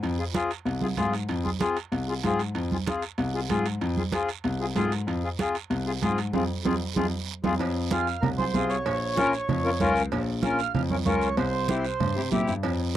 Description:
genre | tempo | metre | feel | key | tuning
latin, cumbia | 190 BPM | 4/4 | straight | F minor, F harmonic minor from 7.6 s | A4 = 438 Hz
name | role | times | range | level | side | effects
warm grand piano | bass | 0.0-13.0 s | Bb1 to C3 | -28 LUFS | left 1 dB | none
congas | percussion | 0.0-12.8 s | none | -30 LUFS | right 4 dB | none
guiro | percussion | 0.0-13.0 s | none | -40 LUFS | right 13 dB | none
timbales and cowbell | percussion | 0.0-12.8 s | none | -36 LUFS | right 9 dB | none
accordion | accompaniment | 0.2-13.0 s | C4 to Bb4 | -27 LUFS | left 4 dB | none
mellow accordion | second line | 7.9-12.3 s | Bb4 to F5 | -29 LUFS | right 4 dB | none
room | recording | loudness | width
light reverb | dry, close 1970s-style studio recording | -24 LUFS | side -12 dB against mid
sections
0.0-7.6 A section; 7.6-13.0 B section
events
drum fill 6.3-7.6; band accent 6.3-7.6; accordion solo 7.6-13.0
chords
0.0 Fm; 8.9 Bbm; 11.4 C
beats
| 0.03 0.35 0.66 0.98 | 1.29 1.61 1.92 2.24 | 2.55 2.87 3.18 3.50 | 3.81 4.13 4.44 4.76 | 5.08 5.39 5.71 6.02 | 6.34 6.65 6.97 7.28 | 7.60 7.91 8.23 8.54 | 8.86 9.17 9.49 9.80 | 10.12 10.43 10.75 11.06 | 11.38 11.69 12.01 12.32 | 12.64 12.95

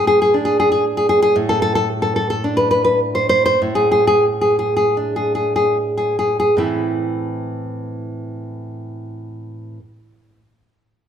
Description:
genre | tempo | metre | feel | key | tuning
romantic piece for solo classical guitar | 35-60 BPM | 2/4 | rubato | A minor | A4 = 440 Hz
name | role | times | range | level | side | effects
nylon-string guitar | solo | 0.0-9.8 s | A2 to C5 | -16 LUFS | equal | none
room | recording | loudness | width
wet recital hall reverb, RT60 1.7 s | none | -15 LUFS | side -8 dB against mid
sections
0.0-6.6 A section; 6.6-11.1 B section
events
slowing down 0.3-6.6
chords
0.0 D5/A; 6.6 Am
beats
0.34 | 1.35 2.42 | 3.59 4.96 | 6.61 8.25

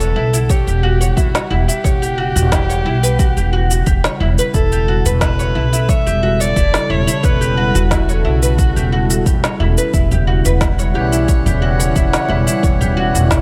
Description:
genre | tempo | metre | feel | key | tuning
organic downtempo | 89 BPM | 4/4 | straight | E dorian | A4 = 440 Hz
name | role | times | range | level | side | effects
rich kamancheh | melody | 0.0-9.6 s | F#4 to E5 | -24 LUFS | equal | tape echo
warm analog pad | sustained chords | 0.0-13.4 s | C#3 to F#5 | -25 LUFS | equal | chorus, sidechain pumping
oud | arpeggios | 0.0-13.4 s | E4 to C#5 | -25 LUFS | equal | tape echo
upright bass | bass | 0.0-13.4 s | E1 to B1 | -19 LUFS | equal | sidechain pumping
electronic cabasa and snare drum | drums | 0.0-13.4 s | none | -24 LUFS | equal | none
electronic kick drum | drums | 0.5-13.4 s | none | -19 LUFS | equal | none
congas and bongos | percussion | 10.1-12.9 s | none | -23 LUFS | equal | none
pedal harmonium | accompaniment | 10.9-13.4 s | E3 to F#5 | -23 LUFS | equal | sidechain pumping, tape echo
room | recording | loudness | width
light reverb, studio ambience | none | -15 LUFS | mono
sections
0.0-13.4 A section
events
none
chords
0.0 Em69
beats
0.50 1.17 | 1.85 2.52 3.20 3.87 | 4.54 5.22 5.89 6.57 | 7.24 7.92 8.59 9.26 | 9.94 10.61 11.29 11.96 | 12.63 13.31

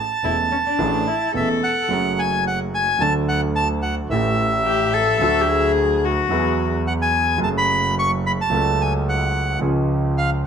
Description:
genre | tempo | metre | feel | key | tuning
tango | 109 BPM | 4/4 | rubato | F# minor | A4 = 440 Hz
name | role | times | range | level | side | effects
bandoneon | melody | 0.0-10.3 s | E5 to C#6 | -21 LUFS | right 1 dB | plate reverb
warm cello | second line | 0.2-6.7 s | C#4 to A4 | -21 LUFS | left 6 dB | none
warm concert grand piano | accompaniment | 0.2-10.5 s | E1 to A4 | -23 LUFS | right 2 dB | none
clear double bass | bass | 0.2-10.5 s | E1 to E2 | -25 LUFS | right 1 dB | none
room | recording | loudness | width
moderate club reverb, RT60 0.8 s | none | -17 LUFS | side -7 dB against mid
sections
0.0-1.9 A section; 1.9-10.5 B section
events
none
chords
0.0 Amaj7; 1.9 F#madd9; 3.0 D; 4.1 A7; 5.2 D; 6.3 Eadd9; 7.4 F#madd9; 8.5 F#m/C#; 9.6 C#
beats
0.24 0.80 1.35 | 1.91 2.46 3.01 3.56 | 4.12 4.67 5.22 5.77 | 6.32 6.87 7.42 7.97 | 8.52 9.07 9.62 10.17

